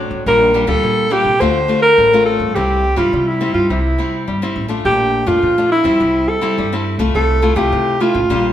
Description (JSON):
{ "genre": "samba and choro", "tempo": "105 BPM", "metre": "4/4", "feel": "straight", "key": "F major", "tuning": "A4 = 440 Hz", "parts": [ { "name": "nylon-string guitar", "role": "accompaniment", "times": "0.0-8.5 s", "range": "A2 to F4", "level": "-19 LUFS", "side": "left 3 dB", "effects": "none" }, { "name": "upright bass", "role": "bass", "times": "0.0-8.5 s", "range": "G1 to C3", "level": "-21 LUFS", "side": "right 1 dB", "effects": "none" }, { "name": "mellow alto saxophone", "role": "melody", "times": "0.3-8.5 s", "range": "E4 to C5", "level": "-14 LUFS", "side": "equal", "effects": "none" } ], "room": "wet stone room reverb, RT60 1.2 s", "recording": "band playing live in one room", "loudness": "-13 LUFS", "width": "side -11 dB against mid", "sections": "0.0-8.5 A section", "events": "none", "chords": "0.3 Gm7/Bb; 1.4 Dm7; 2.6 C; 4.9 Bbmaj7; 6.0 C; 7.1 Fmaj7/C", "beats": "| 0.27 0.84 1.41 1.99 | 2.56 3.13 3.71 4.28 | 4.85 5.43 6.00 6.57 | 7.15 7.72 8.29" }